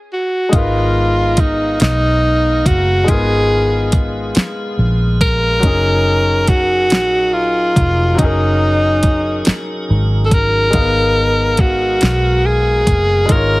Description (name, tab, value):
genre	slow six-eight R&B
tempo	47 BPM (dotted quarters)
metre	6/8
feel	straight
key	G# dorian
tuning	A4 = 438 Hz
part	breathy tenor saxophone	melody	0.1-13.6 s	D#4 to A#4	-15 LUFS	equal	none
part	clear grand piano	accompaniment	0.5-13.6 s	F#3 to E#5	-23 LUFS	left 3 dB	none
part	tonewheel organ	sustained chords	0.5-13.6 s	F#3 to A#5	-25 LUFS	equal	overdrive, slow rotary speaker
part	vintage muted fingered electric bass	bass	0.5-13.6 s	E#1 to B1	-17 LUFS	equal	none
part	smooth R&B drum kit	drums	0.5-13.5 s	hi-hat, kick drum, snare drum	-14 LUFS	equal	none
room	light reverb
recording	heavily compressed radio sound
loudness	-12 LUFS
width	side -21 dB against mid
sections	0.5-13.6 A section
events	stop 0.0-0.5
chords	0.0 N.C.; 0.5 G#m69; 5.6 F#69; 10.7 G#m69